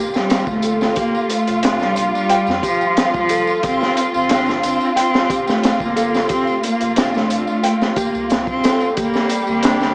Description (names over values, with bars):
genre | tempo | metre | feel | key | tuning
trip hop | 90 BPM | 4/4 | straight | G minor | A4 = 440 Hz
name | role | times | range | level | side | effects
clear cello | melody | 0.0-9.9 s | F3 to C4 | -19 LUFS | equal | tape echo
warm studio violin section | sustained chords | 0.0-9.9 s | G3 to G4 | -21 LUFS | equal | none
nylon-string guitar | arpeggios | 0.0-9.9 s | D4 to G5 | -23 LUFS | equal | vintage 12-bit sampler grit, tape echo
soft dub sub bass | bass | 0.1-9.9 s | D1 to F2 | -37 LUFS | equal | none
tambourine | percussion | 0.1-9.9 s | none | -34 LUFS | equal | dub echo
crunchy breakbeat drum kit | drums | 0.2-9.9 s | hi-hat, kick drum, snare drum | -20 LUFS | equal | dub echo
room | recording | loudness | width
light reverb, small room ambience | echo-heavy mix, vinyl crackle, small speaker sound | -15 LUFS | side -39 dB against mid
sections
0.0-9.9 A section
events
none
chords
0.0 G5; 1.0 Fsus2; 3.6 G5; 6.3 F5; 9.0 G5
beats
0.30 | 0.96 1.63 2.30 2.96 | 3.63 4.30 4.96 5.63 | 6.30 6.96 7.63 8.30 | 8.96 9.63